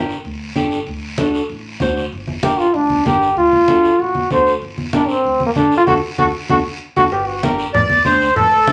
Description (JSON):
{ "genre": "latin, cumbia", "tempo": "192 BPM", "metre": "4/4", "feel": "straight", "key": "G harmonic minor", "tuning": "A4 = 438 Hz", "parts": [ { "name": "flamenco guitar", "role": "accompaniment", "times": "0.0-8.7 s", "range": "D4 to C5", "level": "-24 LUFS", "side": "equal", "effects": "none" }, { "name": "upright bass", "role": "bass", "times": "0.0-8.7 s", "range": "G1 to D2", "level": "-33 LUFS", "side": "equal", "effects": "none" }, { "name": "guiro", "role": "percussion", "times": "0.1-8.7 s", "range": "none", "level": "-34 LUFS", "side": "equal", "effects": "none" }, { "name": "congas", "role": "percussion", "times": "0.2-8.7 s", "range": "none", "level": "-25 LUFS", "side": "equal", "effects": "none" }, { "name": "clear trombone", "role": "second line", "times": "2.4-7.7 s", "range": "Bb3 to C5", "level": "-17 LUFS", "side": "equal", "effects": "none" }, { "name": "cowbell", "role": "percussion", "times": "7.1-8.5 s", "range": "none", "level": "-33 LUFS", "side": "equal", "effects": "none" }, { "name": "accordion", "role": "melody", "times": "7.7-8.7 s", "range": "A4 to D5", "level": "-14 LUFS", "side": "equal", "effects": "light tremolo tuning" } ], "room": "wet studio reverb, RT60 0.6 s", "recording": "nothing above 10.6 kHz", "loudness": "-16 LUFS", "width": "mono", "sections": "0.0-7.1 A section; 7.1-8.7 B section", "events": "trombone solo 0.0-7.1; band accent 5.9-7.1; nylon-string guitar fill 6.5-7.1", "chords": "0.0 Gm; 0.9 D7; 2.1 Gm; 3.4 D; 4.6 Gm; 5.9 D; 7.1 Gm", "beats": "0.25 0.56 | 0.87 1.19 1.50 1.81 | 2.12 2.43 2.75 3.06 | 3.37 3.68 4.00 4.31 | 4.62 4.93 5.25 5.56 | 5.87 6.18 6.49 6.81 | 7.12 7.43 7.74 8.05 | 8.37 8.68" }